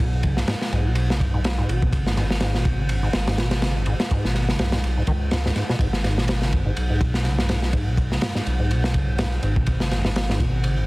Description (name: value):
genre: breakbeat, breaks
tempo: 124 BPM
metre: 4/4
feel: swing 56% on 16ths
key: G# minor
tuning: A4 = 439 Hz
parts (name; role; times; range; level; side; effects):
- deep acid bass; riff; 0.0-10.9 s; F#2 to D#3; -25 LUFS; equal; tape echo
- saturated sub bass; bass; 0.0-10.8 s; G#1 to C#2; -24 LUFS; equal; tube saturation
- crunchy breakbeat drum kit; drums; 0.0-10.8 s; kick drum, ride cymbal, snare drum; -23 LUFS; equal; none
room: light reverb, small room ambience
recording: dense, heavily limited modern master, vinyl crackle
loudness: -20 LUFS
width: side -22 dB against mid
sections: 0.0-10.9 A section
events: none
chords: 0.0 G#m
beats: | 0.00 0.48 0.96 1.45 | 1.93 2.42 2.90 3.38 | 3.87 4.35 4.83 5.32 | 5.80 6.29 6.77 7.25 | 7.74 8.22 8.71 9.19 | 9.67 10.16 10.64